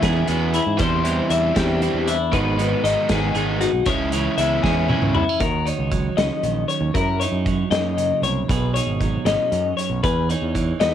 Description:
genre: math rock and midwest emo.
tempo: 78 BPM (dotted quarters).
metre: 6/8.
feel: straight.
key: unclear.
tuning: A4 = 438 Hz.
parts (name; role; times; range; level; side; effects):
clean electric guitar; accompaniment; 0.0-10.9 s; E2 to G#4; -26 LUFS; right 10 dB; cassette tape.
twelve-string electric guitar; arpeggios; 0.0-10.9 s; E4 to E5; -23 LUFS; left 7 dB; cassette tape.
overdriven electric guitar; riff; 0.0-5.2 s; C#3 to E4; -23 LUFS; right 1 dB; cassette tape.
growling fingered electric bass; bass; 0.0-10.9 s; G#1 to G#2; -24 LUFS; right 1 dB; overdrive.
loose indie drum kit; drums; 0.0-10.9 s; hi-hat, kick drum, snare drum, toms; -25 LUFS; right 1 dB; cassette tape.
room: little or no reverb.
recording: home recording on cassette.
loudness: -18 LUFS.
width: side -10 dB against mid.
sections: 0.0-5.4 A section; 5.4-10.9 B section.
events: drum fill 4.6-5.4.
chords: 0.0 E69; 0.8 Cadd9/E; 2.3 G#m7; 3.9 C#m7; 5.4 D#m7; 7.0 F#6; 8.5 B69; 10.0 Emaj7.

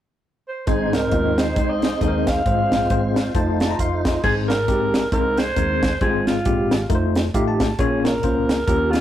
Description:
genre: uptempo gospel.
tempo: 135 BPM.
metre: 4/4.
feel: swing 58% on 8ths.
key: Ab major.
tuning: A4 = 440 Hz.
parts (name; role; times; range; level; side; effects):
growling alto saxophone; melody; 0.5-9.0 s; F4 to F5; -23 LUFS; right 1 dB; none.
barky tine electric piano; accompaniment; 0.7-9.0 s; Ab2 to C6; -22 LUFS; left 2 dB; fast stereo tremolo.
tonewheel organ; sustained chords; 0.7-4.2 s; Ab3 to C5; -25 LUFS; right 2 dB; slow rotary speaker, overdrive, chorus vibrato.
hollow-body short-scale fingered electric bass; bass; 0.7-9.0 s; F1 to Eb2; -27 LUFS; equal; none.
tight funk drum kit; drums; 0.7-9.0 s; crash cymbal, hi-hat, kick drum, snare drum; -22 LUFS; equal; none.
room: moderate studio reverb, RT60 0.5 s.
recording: rough rehearsal-room recording, tube saturation.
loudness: -17 LUFS.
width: side -12 dB against mid.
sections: 0.7-4.2 A section; 4.2-9.0 B section.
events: tine electric piano fill 2.9-4.2, 7.1-7.8.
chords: 0.0 N.C.; 0.7 Ab; 2.5 Fm/Ab; 3.3 F7; 4.2 Ab; 6.0 Fm/Ab; 6.9 F7; 7.8 Bbm.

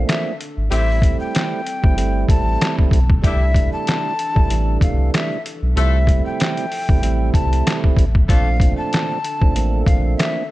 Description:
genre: hip hop, boom-bap hip-hop.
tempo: 95 BPM.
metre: 4/4.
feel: swing 56% on 16ths.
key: A phrygian.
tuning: A4 = 440 Hz.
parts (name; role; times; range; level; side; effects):
breathy jazz flute; melody; 0.0-10.5 s; E5 to A5; -25 LUFS; left 2 dB; high-pass filter, low-pass filter.
tonewheel organ; accompaniment; 0.0-10.4 s; Bb2 to E4; -25 LUFS; right 7 dB; stopped rotary speaker, high-pass filter, low-pass filter.
dark analog pad; sustained chords; 0.0-10.5 s; D3 to E5; -34 LUFS; left 4 dB; lush chorus, high-pass filter, low-pass filter.
warm sub bass; bass; 0.0-10.2 s; G1 to C2; -18 LUFS; equal; none.
trip hop sampler-style drum kit; drums; 0.1-10.4 s; handclaps, hi-hat, kick drum, snare drum; -17 LUFS; equal; vintage 12-bit sampler grit.
warm horn section; stabs; 0.7-8.5 s; G3 to A4; -28 LUFS; left 4 dB; high-pass filter, low-pass filter, tape echo.
room: digital ambience.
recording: none.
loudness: -15 LUFS.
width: side -17 dB against mid.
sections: 0.0-10.5 A section.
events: none.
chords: 0.0 Bbmaj7; 0.7 Am7; 3.2 C69; 5.8 Fmaj7; 8.3 Bbmaj7.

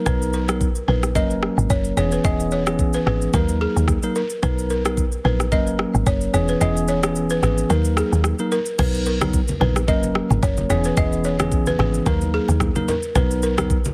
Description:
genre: afrobeats.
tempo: 110 BPM.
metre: 4/4.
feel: swing 55% on 16ths.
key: B major.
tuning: A4 = 443 Hz.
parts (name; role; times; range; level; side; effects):
bell-like tine electric piano; accompaniment; 0.0-13.8 s; E3 to A#4; -26 LUFS; equal; none.
balafon; riff; 0.1-13.5 s; G#4 to D#5; -28 LUFS; equal; delay.
woody log drum bass; bass; 0.1-13.9 s; E1 to D#2; -25 LUFS; equal; none.
afro-pop drum kit; drums; 0.1-13.9 s; crash cymbal, kick drum, rim click, shaker; -26 LUFS; equal; none.
congas; percussion; 8.8-13.9 s; none; -31 LUFS; equal; none.
room: digital ambience.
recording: heavily compressed radio sound, multiband compression.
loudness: -20 LUFS.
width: mono.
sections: 0.0-8.8 A section; 8.8-13.9 B section.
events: kick muted 6.6-8.8.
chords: 0.1 Bmaj7; 1.2 F#; 2.0 E6; 3.3 D#m; 4.4 Bmaj7; 5.5 F#; 6.3 E6; 7.7 D#m; 8.8 Bmaj7; 9.9 F#; 10.7 E6; 12.1 D#m; 13.2 Bmaj7.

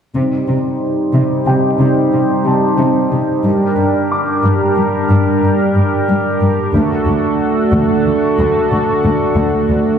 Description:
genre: cinematic.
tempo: 91 BPM.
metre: 5/4.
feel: straight.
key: C dorian.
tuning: A4 = 441 Hz.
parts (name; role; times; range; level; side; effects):
chorused pulse-width pad; sustained chords; 0.1-10.0 s; G3 to C5; -14 LUFS; right 1 dB; low-pass filter.
dark symphonic cello section; bass; 0.1-9.8 s; D2 to C3; -16 LUFS; equal; none.
dark concert grand piano; texture; 1.5-6.8 s; G4 to D6; -22 LUFS; left 1 dB; digital delay.
room: wet scoring stage reverb, RT60 1.4 s.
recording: heard from further back in the room.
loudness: -12 LUFS.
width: side -7 dB against mid.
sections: 0.1-10.0 A section.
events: filter sweep on analog synth pad 0.1-10.0.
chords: 0.1 Cm; 3.4 Gm; 6.7 D.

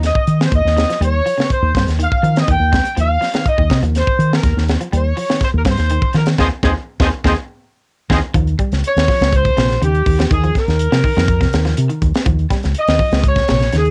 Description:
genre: afrobeat.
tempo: 123 BPM.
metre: 4/4.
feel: straight.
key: Eb mixolydian.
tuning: A4 = 440 Hz.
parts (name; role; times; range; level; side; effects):
electric guitar at the edge of break-up; arpeggios; 0.0-13.9 s; C3 to Ab3; -27 LUFS; equal; none.
fingered electric bass; bass; 0.0-13.9 s; Bb1 to Eb3; -18 LUFS; equal; none.
tight funk drum kit; drums; 0.0-13.9 s; hi-hat, kick drum, snare drum; -20 LUFS; equal; none.
warm horn section; melody; 0.1-13.9 s; G4 to G5; -21 LUFS; equal; none.
room: light reverb.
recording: home recording on cassette.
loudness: -16 LUFS.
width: mono.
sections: 0.0-8.3 A section; 8.3-13.9 B section.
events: band accent 6.4-8.3.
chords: 0.0 N.C.; 0.5 Eb7sus2; 2.5 Ab5/Eb (rootless); 4.4 Eb7sus2; 6.4 Ab5/Eb; 8.3 Eb13; 10.3 Ab69/Eb (rootless); 12.3 Eb7sus2.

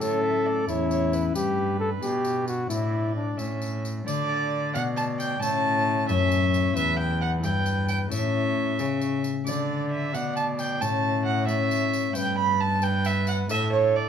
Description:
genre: classical, renaissance-style consort dance.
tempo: 89 BPM (dotted quarters).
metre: 6/8.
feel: straight.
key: unclear.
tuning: A4 = 437 Hz.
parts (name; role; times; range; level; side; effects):
mellow cornet; melody; 0.0-14.1 s; C#4 to D5; -30 LUFS; left 1 dB; none.
dark violin; second line; 0.0-14.1 s; B4 to B5; -28 LUFS; right 4 dB; none.
concert harp; accompaniment; 0.0-14.1 s; E2 to D5; -29 LUFS; left 9 dB; none.
rich cello; bass; 0.0-14.1 s; E2 to D3; -28 LUFS; right 2 dB; none.
tambourine; percussion; 0.0-13.7 s; none; -42 LUFS; left 3 dB; none.
room: moderate stone room reverb, RT60 1.1 s.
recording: none.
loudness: -23 LUFS.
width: side -8 dB against mid.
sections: 0.0-4.1 A section; 4.1-14.1 A section.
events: none.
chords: 0.0 A; 1.4 G; 2.7 Asus4; 3.4 A; 4.1 D; 5.4 A; 6.8 Em; 8.1 A; 9.5 D; 10.8 A; 12.2 G; 13.5 Asus4.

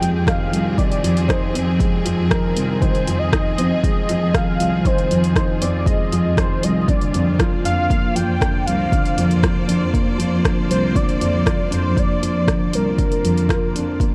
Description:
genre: piano and strings electronica.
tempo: 118 BPM.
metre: 4/4.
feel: straight.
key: F dorian.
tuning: A4 = 440 Hz.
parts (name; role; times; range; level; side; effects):
warm velvety synth lead; melody; 0.0-14.1 s; Bb4 to G5; -27 LUFS; equal; chorus.
clear studio string section; sustained chords; 0.0-14.1 s; F3 to D5; -31 LUFS; equal; sidechain pumping.
felt-muted upright piano; riff; 0.0-14.1 s; D3 to F4; -25 LUFS; equal; none.
dark chamber cello section; bass; 0.0-13.9 s; C2 to F2; -24 LUFS; equal; sidechain pumping.
deep house drum kit; drums; 0.0-14.1 s; hi-hat, rim click; -28 LUFS; equal; overdrive.
electronic kick drum; drums; 0.3-14.1 s; none; -23 LUFS; equal; overdrive.
room: small room ambience.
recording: dark, warm production.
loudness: -18 LUFS.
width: mono.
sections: 0.0-14.1 A section.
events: none.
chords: 0.0 Fm7; 6.9 Bb.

